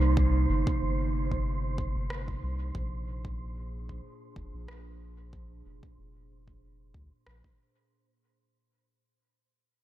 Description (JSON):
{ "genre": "ambient dub", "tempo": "93 BPM", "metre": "4/4", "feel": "swing 55% on 16ths", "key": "unclear", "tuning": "A4 = 439 Hz", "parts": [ { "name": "warbly tape-like pad", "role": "sustained chords", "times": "0.0-7.9 s", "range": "Bb2 to C5", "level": "-35 LUFS", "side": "right 4 dB", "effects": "chorus, built-in reverb" }, { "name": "soft dub sub bass", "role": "bass", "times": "0.0-7.4 s", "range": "F1 to D2", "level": "-30 LUFS", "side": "equal", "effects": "none" }, { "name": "wind-like tuned noise texture", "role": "texture", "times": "0.0-7.9 s", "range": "C5", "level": "-41 LUFS", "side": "right 5 dB", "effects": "built-in reverb" }, { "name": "electronic kick drum", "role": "drums", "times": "0.2-7.6 s", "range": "none", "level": "-33 LUFS", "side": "equal", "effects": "none" }, { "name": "electronic rim click", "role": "drums", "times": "2.1-7.4 s", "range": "none", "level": "-46 LUFS", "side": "equal", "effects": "dub echo" } ], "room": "light reverb, digital ambience", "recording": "none", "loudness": "-28 LUFS", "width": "side -14 dB against mid", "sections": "0.0-7.9 A section", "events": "fade-out 0.0-7.9", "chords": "0.0 Cm7; 2.7 Bb7" }